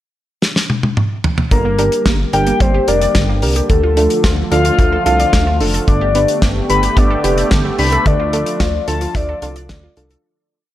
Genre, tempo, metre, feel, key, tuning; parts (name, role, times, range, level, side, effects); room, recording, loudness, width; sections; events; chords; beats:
synth-pop; 110 BPM; 4/4; straight; D minor; A4 = 444 Hz
damped 70s drum kit; drums; 0.4-10.2 s; hi-hat, kick drum, snare drum, toms; -16 LUFS; equal; gated reverb
soft octave-layered synth lead; melody; 1.5-10.0 s; A4 to B5; -18 LUFS; left 3 dB; chorus, phaser
sweeping resonant pad; sustained chords; 1.5-10.2 s; D3 to G4; -22 LUFS; right 1 dB; chorus
wide unison pluck; arpeggios; 1.5-10.2 s; D3 to D5; -25 LUFS; right 4 dB
chorused synth bass; bass; 1.5-10.2 s; F1 to D2; -18 LUFS; equal
soft round pluck; accompaniment; 1.8-10.2 s; D4 to B4; -22 LUFS; right 2 dB; chorus
light reverb; -12 LUFS; side -13 dB against mid
0.0-1.5 pickup bar; 1.5-10.2 chorus
drum fill 0.4-1.5; fade-out 8.1-10.2
0.0 N.C.; 1.5 Gm; 3.7 Dm; 5.9 Gadd9; 8.1 Dm
0.42 0.97 | 1.51 2.06 2.61 3.15 | 3.70 4.24 4.79 5.33 | 5.88 6.42 6.97 7.51 | 8.06 8.61 9.15 9.70